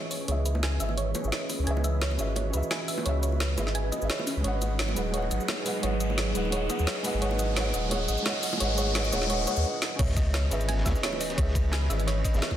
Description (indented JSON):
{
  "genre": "liquid drum and bass",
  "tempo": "173 BPM",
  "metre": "4/4",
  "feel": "swing 54% on 16ths",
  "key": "C# minor",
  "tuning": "A4 = 440 Hz",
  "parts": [
    { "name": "felt-muted upright piano", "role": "accompaniment", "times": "0.0-12.6 s", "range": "G#3 to F#5", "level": "-33 LUFS", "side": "equal", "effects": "low-pass filter, dub echo" },
    { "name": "airy breathy pad", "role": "sustained chords", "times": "0.0-12.6 s", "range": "E3 to B4", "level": "-36 LUFS", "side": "right 2 dB", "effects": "chorus, phaser, sidechain pumping" },
    { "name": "thumb-piano-like synth pluck", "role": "arpeggios", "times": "0.0-12.6 s", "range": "C#4 to G#5", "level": "-35 LUFS", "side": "right 3 dB", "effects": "chorus, dub echo" },
    { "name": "riser and sub drop", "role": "sound effects", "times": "2.0-11.4 s", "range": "none", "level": "-36 LUFS", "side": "left 1 dB", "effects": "none" },
    { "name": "drum and bass drum kit", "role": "drums", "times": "0.1-12.5 s", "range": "cabasa, crash cymbal, hi-hat, snare drum", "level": "-32 LUFS", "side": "equal", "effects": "overdrive, studio reverb" },
    { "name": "saturated sub bass", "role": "bass", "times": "0.3-12.4 s", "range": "D#1 to D#2", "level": "-28 LUFS", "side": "equal", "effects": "none" },
    { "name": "bongos", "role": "percussion", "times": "0.3-12.6 s", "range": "none", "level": "-41 LUFS", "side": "right 2 dB", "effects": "none" },
    { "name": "crunchy breakbeat drum kit", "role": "drums", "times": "10.0-12.5 s", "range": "ride cymbal, snare drum", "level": "-39 LUFS", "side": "equal", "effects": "high-pass filter on cymbals, studio reverb, high-pass filter on snare, high-pass filter on room" },
    { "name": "electronic kick drum", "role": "drums", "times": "10.0-12.6 s", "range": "none", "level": "-28 LUFS", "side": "equal", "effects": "overdrive, studio reverb" }
  ],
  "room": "wet recital hall reverb, RT60 1.4 s, small room reverb",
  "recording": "dense, heavily limited modern master",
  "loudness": "-25 LUFS",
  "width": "side -11 dB against mid",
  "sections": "0.0-10.0 A section; 10.0-12.6 B section",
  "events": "build-up 0.0-10.0; filter sweep on felt piano 0.0-10.0; filter sweep on analog synth pad 0.0-10.0; filter sweep on synth arpeggio sound 0.0-10.0; riser 2.0-9.6; stop 9.6-10.0; drum fill 9.8; drop 10.0-12.6; impact 10.0-11.4",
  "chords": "0.0 C#m7; 4.4 G#m7; 10.0 C#m7"
}